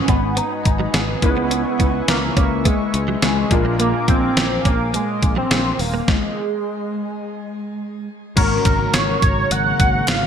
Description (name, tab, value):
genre	1980s-style pop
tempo	105 BPM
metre	4/4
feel	straight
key	unclear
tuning	A4 = 440 Hz
part	octave-doubled lead	melody	0.0-10.3 s	G#3 to F#5	-21 LUFS	equal	chorus, phaser, shimmer reverb, ping-pong delay
part	clear grand piano	accompaniment	0.0-10.3 s	G#2 to C#5	-26 LUFS	left 3 dB	ensemble chorus, shimmer reverb
part	chorused pulse-width pad	sustained chords	0.0-10.3 s	C#3 to D#6	-28 LUFS	equal	shimmer reverb
part	direct-recorded clean electric guitar	riff	0.1-6.0 s	F#3 to C#4	-30 LUFS	right 6 dB	ensemble chorus, shimmer reverb, ping-pong delay
part	sustaining fretless electric bass	bass	0.1-10.3 s	D#1 to C#2	-24 LUFS	equal	none
part	clean 12-bit digital drum machine	drums	0.1-10.2 s	crash cymbal, hi-hat, kick drum, snare drum	-18 LUFS	equal	gated reverb
part	group handclap	percussion	8.7-10.2 s	none	-32 LUFS	right 4 dB	none
room	moderate plate reverb, RT60 1.3 s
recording	bright 1980s-style digital production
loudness	-16 LUFS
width	side -8 dB against mid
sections	0.0-8.4 A section; 8.4-10.3 B section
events	stop 6.1-8.4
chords	0.0 G#m7; 1.2 C#m7; 3.5 A#7; 6.1 N.C.; 8.4 F#/G#